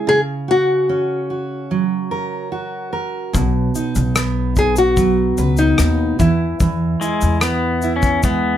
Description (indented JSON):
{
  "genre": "acoustic pop",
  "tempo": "74 BPM",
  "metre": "4/4",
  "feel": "straight",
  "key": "B major",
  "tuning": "A4 = 444 Hz",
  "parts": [
    { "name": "fingerpicked steel-string acoustic guitar", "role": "accompaniment", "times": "0.0-8.6 s", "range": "B2 to B4", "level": "-21 LUFS", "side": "right 5 dB", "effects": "none" },
    { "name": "nylon-string guitar", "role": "melody", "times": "0.1-8.6 s", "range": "D#4 to G#4", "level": "-18 LUFS", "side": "left 2 dB", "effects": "none" },
    { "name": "upright bass", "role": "bass", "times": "3.3-8.6 s", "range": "B1 to E2", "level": "-20 LUFS", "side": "left 1 dB", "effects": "none" },
    { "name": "loose indie drum kit", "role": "drums", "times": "3.3-8.4 s", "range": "kick drum, rim click, shaker", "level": "-20 LUFS", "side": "left 1 dB", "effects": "none" },
    { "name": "pedal steel guitar", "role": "second line", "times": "7.0-8.6 s", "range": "G#3 to C#4", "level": "-19 LUFS", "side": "left 6 dB", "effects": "none" }
  ],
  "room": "light reverb",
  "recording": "none",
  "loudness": "-15 LUFS",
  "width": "side -11 dB against mid",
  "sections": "0.0-8.6 A section",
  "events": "none",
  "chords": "0.1 F#/C#; 3.3 B; 6.2 E",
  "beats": "| 0.08 0.90 1.71 2.52 | 3.34 4.16 4.97 5.79 | 6.60 7.42 8.24"
}